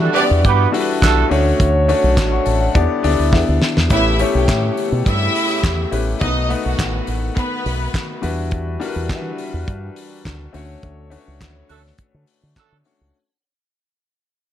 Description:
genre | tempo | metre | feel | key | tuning
disco | 104 BPM | 4/4 | straight | E dorian | A4 = 440 Hz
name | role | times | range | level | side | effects
clear concert grand piano | accompaniment | 0.0-13.2 s | G3 to C#6 | -22 LUFS | left 5 dB | none
mellow French horn section | sustained chords | 0.0-13.1 s | C#3 to C#5 | -24 LUFS | equal | none
warm horn section | stabs | 0.0-1.3, 11.7-12.8 s | A3 to D5 | -19 LUFS | right 9 dB | none
fingered electric bass with an envelope filter | bass | 0.0-13.1 s | A1 to E3 | -19 LUFS | equal | none
clear studio string section | second line | 0.2-0.4, 3.9-8.2 s | B3 to G5 | -22 LUFS | right 1 dB | none
damped 70s drum kit | drums | 0.2-13.0 s | handclaps, hi-hat, kick drum, snare drum | -21 LUFS | equal | gated reverb
room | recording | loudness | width
little or no reverb | none | -15 LUFS | side -11 dB against mid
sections
0.0-3.9 A section; 3.9-13.1 B section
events
drum fill 3.3-3.9; fade-out 3.9-13.1; band accent 10.8-13.1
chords
0.0 Em9; 1.3 Dmaj7; 2.8 Em7; 3.9 A9; 6.2 B7; 8.2 Em9; 10.5 Dmaj7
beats
0.45 1.02 | 1.60 2.18 2.75 3.33 | 3.91 4.48 5.06 5.64 | 6.21 6.79 7.37 7.95 | 8.52 9.10 9.68 10.25 | 10.83 11.41 11.98 12.56

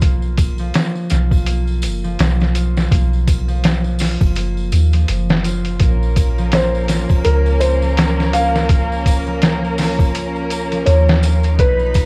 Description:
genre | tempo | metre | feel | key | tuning
trip hop | 83 BPM | 4/4 | swing 58% on 16ths | Bb minor | A4 = 440 Hz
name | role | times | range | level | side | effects
concert harp | arpeggios | 0.0-12.1 s | F3 to F4 | -26 LUFS | equal | tape echo
soft 808-style bass | bass | 0.0-12.1 s | F#1 to D#2 | -20 LUFS | equal | none
trip hop sampler-style drum kit | drums | 0.0-12.1 s | hi-hat, kick drum, snare drum | -19 LUFS | equal | vintage 12-bit sampler grit
tambourine and triangle | percussion | 0.0-12.1 s | none | -38 LUFS | equal | none
warm studio violin section | sustained chords | 5.8-12.1 s | Bb3 to B5 | -26 LUFS | equal | none
felt-muted upright piano | melody | 6.5-12.1 s | Bb4 to F5 | -22 LUFS | equal | tape echo
room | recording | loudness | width
light reverb, small room ambience | worn, warbling old tape, cassette tape, vinyl crackle, warbly pitch drift | -16 LUFS | mono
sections
0.0-12.1 A section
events
none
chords
0.0 B5; 5.8 Bbmadd9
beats
| 0.02 0.75 1.47 2.19 | 2.92 3.64 4.36 5.08 | 5.81 6.53 7.25 7.98 | 8.70 9.42 10.14 10.87 | 11.59

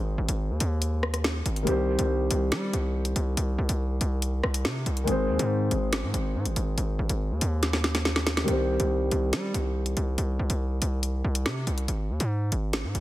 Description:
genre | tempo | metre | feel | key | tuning
hip hop, drill | 141 BPM | 4/4 | half-time | C minor | A4 = 441 Hz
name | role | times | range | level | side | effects
dark grand piano | accompaniment | 0.0-11.9 s | Eb3 to C5 | -30 LUFS | left 1 dB | low-pass filter
distorted 808-style bass | bass | 0.0-13.0 s | Ab1 to G3 | -27 LUFS | equal | distortion
drill drum kit | drums | 0.3-13.0 s | hi-hat, rim click, snare drum | -29 LUFS | equal | overdrive
room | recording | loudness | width
digital ambience | dense, heavily limited modern master | -24 LUFS | side -16 dB against mid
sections
0.0-8.5 A section; 8.5-13.0 B section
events
drum fill 7.6-8.5; break 10.2-13.0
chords
0.0 Ab; 1.7 Cm; 5.1 Ab; 8.5 Cm; 11.9 Ab5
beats
0.39 0.82 1.25 | 1.67 2.10 2.52 2.95 | 3.37 3.80 4.22 4.65 | 5.07 5.50 5.92 6.35 | 6.78 7.20 7.63 8.05 | 8.48 8.90 9.33 9.76 | 10.18 10.61 11.03 11.46 | 11.88 12.31 12.73

